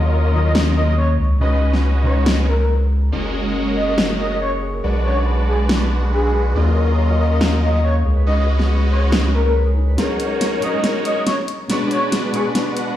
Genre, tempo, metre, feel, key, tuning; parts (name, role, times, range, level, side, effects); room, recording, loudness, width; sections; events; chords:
future bass; 140 BPM; 4/4; half-time; F# major; A4 = 439 Hz
felt-muted upright piano; accompaniment; 0.0-3.1, 10.0-13.0 s; B2 to C#6; -25 LUFS; left 2 dB; digital delay
supersaw chords; riff; 0.0-13.0 s; F#3 to F#5; -23 LUFS; equal; phaser, low-pass filter, digital delay
saturated sub bass; bass; 0.0-10.0 s; F#1 to D#2; -17 LUFS; equal
breathy flute-like synth lead; melody; 0.3-12.4 s; G#4 to D#5; -24 LUFS; equal; analog chorus, digital delay
dubstep drum kit; drums; 0.6-12.9 s; hi-hat, snare drum; -21 LUFS; left 1 dB
concert harp; arpeggios; 3.1-12.5 s; D#4 to B5; -30 LUFS; equal; digital delay
light reverb; played on a big sound system in a bare room, stone room reverb, small room ambience; -15 LUFS; side -12 dB against mid
0.0-10.0 A section; 10.0-13.0 B section
build-up 10.0-13.0; drum fill 10.0-13.0
0.0 D#m9; 1.2 C#9sus4; 3.1 F#69; 4.8 Bm6; 6.6 D#m9; 8.1 C#9sus4; 10.0 F#69; 11.7 Bm6